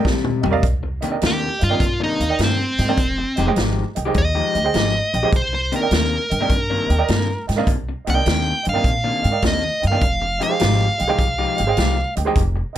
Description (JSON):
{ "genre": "electric blues shuffle", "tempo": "102 BPM", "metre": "4/4", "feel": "swing 68% on 8ths", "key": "C minor", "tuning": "A4 = 439 Hz", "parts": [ { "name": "warm upright piano", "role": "accompaniment", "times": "0.0-12.8 s", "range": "Ab4 to G5", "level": "-24 LUFS", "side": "right 9 dB", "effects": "none" }, { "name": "electric guitar through a small old amp", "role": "riff", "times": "0.0-12.8 s", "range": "C3 to G4", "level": "-25 LUFS", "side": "left 5 dB", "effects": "none" }, { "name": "vintage drum kit", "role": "drums", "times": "0.0-12.8 s", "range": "hi-hat, kick drum, snare drum, toms", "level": "-22 LUFS", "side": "equal", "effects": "none" }, { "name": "upright bass", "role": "bass", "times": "0.1-12.6 s", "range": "F1 to Bb2", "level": "-22 LUFS", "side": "equal", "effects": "none" }, { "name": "dark smooth lead guitar", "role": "melody", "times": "1.3-12.1 s", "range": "C4 to G5", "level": "-21 LUFS", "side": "equal", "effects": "overdrive" } ], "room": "little or no reverb", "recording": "none", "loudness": "-17 LUFS", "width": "side -11 dB against mid", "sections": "0.6-12.8 A section", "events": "drum fill 0.1-0.6", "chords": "0.0 Cm9; 3.0 Fm9; 5.3 Cm9; 10.0 Fm9" }